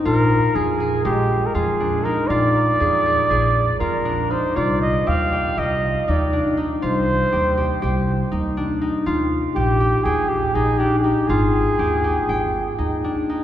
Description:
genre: contemporary instrumental, contemporary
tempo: 240 BPM (eighths)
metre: 9/8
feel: straight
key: unclear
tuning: A4 = 437 Hz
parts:
  - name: concert harp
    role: arpeggios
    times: 0.0-13.4 s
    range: Ab3 to G5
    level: -22 LUFS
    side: left 2 dB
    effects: none
  - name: clear flugelhorn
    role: melody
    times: 0.1-13.0 s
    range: G4 to F5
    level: -21 LUFS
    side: right 1 dB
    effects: none
  - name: upright bass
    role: bass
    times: 0.1-13.4 s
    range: Ab1 to F2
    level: -22 LUFS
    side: equal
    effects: none
room: wet cathedral reverb, RT60 5.2 s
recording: recorded in a church or concert hall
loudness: -17 LUFS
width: side -11 dB against mid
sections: 0.0-13.4 A section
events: none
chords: 0.1 Bb7; 4.6 Cmadd11; 9.1 Ebmaj7; 11.3 Ab5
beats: | 0.06 0.30 0.55 0.80 1.05 1.30 1.55 1.80 2.05 | 2.30 2.55 2.80 3.05 3.30 3.55 3.80 4.05 4.30 | 4.56 4.81 5.07 5.32 5.57 5.82 6.07 6.32 6.57 | 6.82 7.07 7.32 7.58 7.82 8.07 8.32 8.57 8.81 | 9.06 9.31 9.56 9.80 10.05 10.30 10.55 10.80 11.04 | 11.29 11.54 11.79 12.04 12.28 12.53 12.79 13.04 13.29

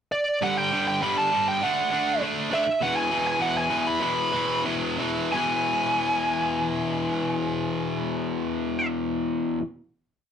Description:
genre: punk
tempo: 172-202 BPM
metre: 4/4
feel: straight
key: E mixolydian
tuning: A4 = 438 Hz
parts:
  - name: smooth overdriven lead guitar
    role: melody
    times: 0.1-8.9 s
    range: D5 to B5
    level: -25 LUFS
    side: right 1 dB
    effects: none
  - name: distorted electric guitar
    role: riff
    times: 0.4-9.6 s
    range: E2 to D4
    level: -25 LUFS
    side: left 1 dB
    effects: overdrive
room: moderate studio ambience, RT60 0.5 s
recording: rough rehearsal-room recording, warm saturation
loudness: -23 LUFS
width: side -8 dB against mid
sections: 0.0-0.4 pickup bar; 0.4-5.3 chorus; 5.3-8.1 final chord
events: slowing down 2.8-5.3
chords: 0.4 G5; 1.6 D; 2.7 E5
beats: 0.13 | 0.43 0.72 1.02 1.32 | 1.62 1.92 2.22 2.52 | 2.81 3.11 3.41 3.71 | 4.02 4.33 4.66 4.99 | 5.33 5.67 6.02 6.37 | 6.71 7.06 7.41 7.76

